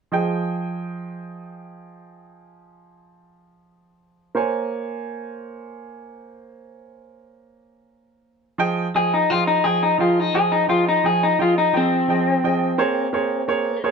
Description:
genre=blues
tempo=57 BPM (dotted quarters)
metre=12/8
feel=straight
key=F minor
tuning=A4 = 440 Hz
part: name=bright upright piano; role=accompaniment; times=0.1-13.9 s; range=F3 to Ab5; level=-23 LUFS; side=right 4 dB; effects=none
part: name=electric guitar through a small old amp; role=melody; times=9.0-13.8 s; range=C4 to Ab4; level=-18 LUFS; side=left 3 dB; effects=plate reverb
room=moderate studio reverb, RT60 0.6 s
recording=none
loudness=-18 LUFS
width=side -5 dB against mid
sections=0.1-8.6 A section; 8.6-13.9 B section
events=clean electric guitar solo 8.6-13.9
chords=0.1 Fm7; 4.4 Bbm7; 8.6 Fm7; 12.8 Bbm7

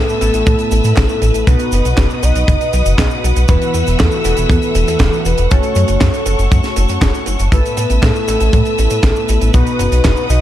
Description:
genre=italo disco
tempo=119 BPM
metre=4/4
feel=straight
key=unclear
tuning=A4 = 439 Hz
part: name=soft octave-layered synth lead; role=melody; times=0.0-10.4 s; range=A4 to D#5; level=-20 LUFS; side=left 1 dB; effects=chorus, tremolo, digital delay
part: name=bright studio string section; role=sustained chords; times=0.0-10.4 s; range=A4 to E6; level=-23 LUFS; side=left 1 dB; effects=none
part: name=chorused polysynth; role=stabs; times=0.0-10.4 s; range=A2 to B4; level=-21 LUFS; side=right 1 dB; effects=none
part: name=chorused synth bass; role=bass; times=0.0-10.4 s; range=E1 to A2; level=-14 LUFS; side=equal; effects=none
part: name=tight funk drum kit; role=drums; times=0.1-10.4 s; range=cabasa, handclaps, hi-hat, snare drum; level=-22 LUFS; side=right 2 dB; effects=none
part: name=kick drum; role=drums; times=0.5-10.1 s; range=none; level=-14 LUFS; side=equal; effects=none
room=light reverb, small room ambience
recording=dark, warm production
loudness=-11 LUFS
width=side -12 dB against mid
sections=0.0-10.4 A section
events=none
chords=0.0 Asus2; 1.5 B; 3.5 Esus2; 5.5 F#m; 7.5 Asus2; 9.5 B

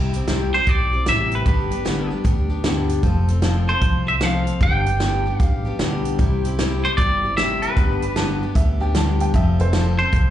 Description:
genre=honky-tonk and classic country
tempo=152 BPM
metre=4/4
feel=swing 64% on 8ths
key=C major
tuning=A4 = 440 Hz
part: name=picked steel-string acoustic guitar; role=accompaniment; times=0.0-10.3 s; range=G2 to A4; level=-24 LUFS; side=left 3 dB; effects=slapback echo
part: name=upright bass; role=bass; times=0.0-10.3 s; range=F1 to D2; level=-22 LUFS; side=equal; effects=none
part: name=natural country drum kit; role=drums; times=0.1-10.2 s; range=hi-hat, kick drum, snare drum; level=-22 LUFS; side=equal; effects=none
part: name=twangy electric guitar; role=melody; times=0.5-10.3 s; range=B4 to G5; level=-22 LUFS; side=right 1 dB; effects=slapback echo, tape echo
part: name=warm upright piano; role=second line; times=8.2-9.9 s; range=A4 to A5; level=-29 LUFS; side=right 4 dB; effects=slapback echo
room=light reverb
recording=live gig heard through the venue's PA, club reverb, nothing above 10.4 kHz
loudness=-17 LUFS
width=side -12 dB against mid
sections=0.0-10.3 A section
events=none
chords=0.0 C; 1.5 G; 3.0 F; 4.6 G; 6.2 C; 7.8 G; 9.3 F

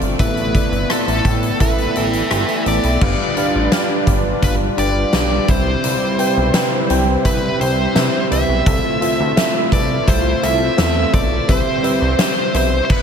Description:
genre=1980s-style pop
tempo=85 BPM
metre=4/4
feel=straight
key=unclear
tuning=A4 = 440 Hz
part: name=FM electric piano with soft pad layer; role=accompaniment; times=0.0-12.9 s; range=G2 to B5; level=-20 LUFS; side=right 1 dB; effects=chorus
part: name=brassy analog pad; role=sustained chords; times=0.0-12.9 s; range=C3 to B4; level=-24 LUFS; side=left 1 dB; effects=chorus
part: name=chorused synth bass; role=bass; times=0.0-12.8 s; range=G1 to C3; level=-20 LUFS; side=equal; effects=none
part: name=huge arena drum kit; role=drums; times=0.0-13.0 s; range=crash cymbal, hi-hat, kick drum, rim click, snare drum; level=-19 LUFS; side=equal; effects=none
part: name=nasal lead guitar with a parked wah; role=melody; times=0.2-13.0 s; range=A4 to E5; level=-21 LUFS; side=equal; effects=overdrive, tape echo
room=moderate huge ambient reverb, RT60 9.3 s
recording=dreamy mix soaked in reverb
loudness=-14 LUFS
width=side -7 dB against mid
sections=0.0-3.0 A section; 3.0-13.0 B section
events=none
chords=0.2 Asus2; 3.0 G7; 5.5 Cmaj7; 8.7 Fmaj7/C; 11.5 Cmaj7

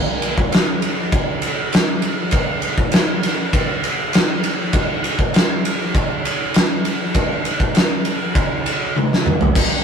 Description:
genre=metal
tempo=100 BPM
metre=4/4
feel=straight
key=none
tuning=none
part: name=oversized low-tuned drum kit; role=drums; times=0.2-9.7 s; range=crash cymbal, kick drum, ride cymbal, snare drum, toms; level=-16 LUFS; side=equal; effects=none
room=light reverb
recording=rough rehearsal-room recording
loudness=-16 LUFS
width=side -6 dB against mid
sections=0.0-9.6 A section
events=drum fill 9.0-9.6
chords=none

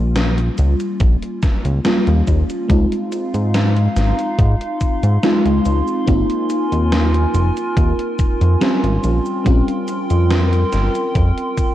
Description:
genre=vaporwave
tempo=71 BPM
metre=4/4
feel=straight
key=unclear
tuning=A4 = 440 Hz
part: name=FM electric piano with soft pad layer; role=accompaniment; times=0.0-11.7 s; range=G3 to F4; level=-20 LUFS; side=equal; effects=wide subtle chorus, diffuse ambient delay
part: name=chorused synth bass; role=bass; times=0.0-11.3 s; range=F1 to Ab2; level=-16 LUFS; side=equal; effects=none
part: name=gated 80s digital drum machine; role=drums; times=0.2-11.7 s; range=cabasa, hi-hat, snare drum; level=-24 LUFS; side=equal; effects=gated reverb, gated reverb snare, overdrive, vintage 12-bit sampler grit
part: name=electronic kick drum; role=drums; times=1.0-11.7 s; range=none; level=-17 LUFS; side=equal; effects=overdrive, vintage 12-bit sampler grit
part: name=warbly tape-like pad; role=sustained chords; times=3.1-11.7 s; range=Eb4 to C6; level=-23 LUFS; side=equal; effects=chorus, built-in reverb
room=moderate plate reverb, RT60 2.5 s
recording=dreamy mix soaked in reverb, cassette tape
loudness=-14 LUFS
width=side -13 dB against mid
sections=0.0-11.7 A section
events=none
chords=0.0 Eb9 (rootless); 2.7 Dbmaj9; 6.1 Ab69; 9.0 Bbm69

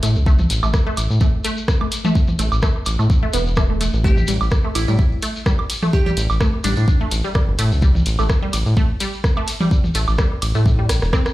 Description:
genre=minimal techno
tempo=127 BPM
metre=4/4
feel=swing 55% on 16ths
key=A minor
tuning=A4 = 440 Hz
part: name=resonant blip pluck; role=riff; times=0.0-11.2 s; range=G3 to C4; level=-26 LUFS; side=equal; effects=phaser, sidechain pumping, tape echo
part: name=round analog bass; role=bass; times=0.0-11.1 s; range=E1 to A2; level=-18 LUFS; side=equal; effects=sidechain pumping
part: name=techno drum kit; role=drums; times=0.0-11.3 s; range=hi-hat, ride cymbal, rim click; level=-26 LUFS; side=equal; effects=overdrive
part: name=shekere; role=percussion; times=0.0-11.3 s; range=none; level=-29 LUFS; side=left 3 dB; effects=none
part: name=electronic kick drum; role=drums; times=0.3-11.2 s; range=none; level=-17 LUFS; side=equal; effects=overdrive
part: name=electronic toms and woodblock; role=percussion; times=0.4-11.2 s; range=none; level=-25 LUFS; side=right 1 dB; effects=ping-pong delay
part: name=glassy wavetable pluck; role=melody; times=4.0-6.8 s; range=D4 to G4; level=-28 LUFS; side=right 2 dB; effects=chorus, ping-pong delay
room=light reverb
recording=played on a big sound system in a bare room, large studio reverb, faint mains hum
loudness=-16 LUFS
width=side -16 dB against mid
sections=0.0-11.3 A section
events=drum fill 10.9-11.3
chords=0.0 A5

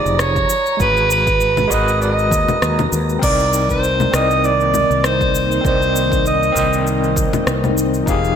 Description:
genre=sunset chillout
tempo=99 BPM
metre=4/4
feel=swing 55% on 16ths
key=C minor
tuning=A4 = 440 Hz
part: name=warm soprano saxophone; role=melody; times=0.0-8.4 s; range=Cb5 to F5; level=-17 LUFS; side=right 1 dB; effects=vintage 12-bit sampler grit, digital delay
part: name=overdriven tine electric piano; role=accompaniment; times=0.0-8.4 s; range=F3 to G5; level=-21 LUFS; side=moving between left 4 dB and right 6 dB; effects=medium tremolo, auto-pan, digital delay
part: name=wind-like tuned noise texture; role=texture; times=0.0-3.2 s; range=Bb5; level=-30 LUFS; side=right 6 dB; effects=built-in reverb, lush chorus
part: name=mellow fretless electric bass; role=bass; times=0.1-8.4 s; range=F1 to Eb2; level=-21 LUFS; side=equal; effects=tube saturation
part: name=deep house drum kit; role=drums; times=0.1-8.4 s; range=cabasa, congas, crash cymbal, rim click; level=-23 LUFS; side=left 3 dB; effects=none
part: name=electronic kick drum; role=drums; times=0.4-8.2 s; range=none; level=-22 LUFS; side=equal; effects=none
part: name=ethereal airy pad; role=sustained chords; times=3.9-8.4 s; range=Eb3 to G5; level=-24 LUFS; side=left 1 dB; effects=ensemble chorus, built-in reverb
room=wet plate reverb, RT60 2.1 s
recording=bright 1980s-style digital production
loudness=-14 LUFS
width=side -8 dB against mid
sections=0.0-3.2 A section; 3.2-8.4 A section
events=none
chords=0.5 Abm9; 3.2 Cm9

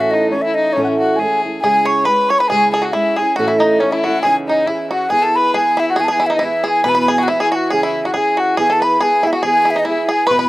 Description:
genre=celtic folk, Celtic polka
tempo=138 BPM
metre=2/4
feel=swing 55% on 8ths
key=C# minor, E major from 5.1 s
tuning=A4 = 440 Hz
part: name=baroque flute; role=melody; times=0.0-10.5 s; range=C#5 to C#6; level=-15 LUFS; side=equal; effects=none
part: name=warm fiddle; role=second line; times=0.0-10.5 s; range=C#4 to C#5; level=-21 LUFS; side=left 4 dB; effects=slapback echo
part: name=fingerpicked old ladder-braced acoustic guitar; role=accompaniment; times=0.0-10.5 s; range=A2 to A4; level=-20 LUFS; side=right 2 dB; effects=slapback echo
part: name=bluegrass banjo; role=second line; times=1.6-10.5 s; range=C#4 to C#5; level=-22 LUFS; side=right 1 dB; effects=slapback echo
room=little or no reverb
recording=recorded outdoors, with no room sound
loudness=-13 LUFS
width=side -18 dB against mid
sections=0.0-5.1 A section; 5.1-10.5 B section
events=none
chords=0.0 A; 1.6 C#m; 3.4 A; 4.2 C#madd9; 5.1 E; 6.8 Bsus4; 7.7 C#m; 8.6 E

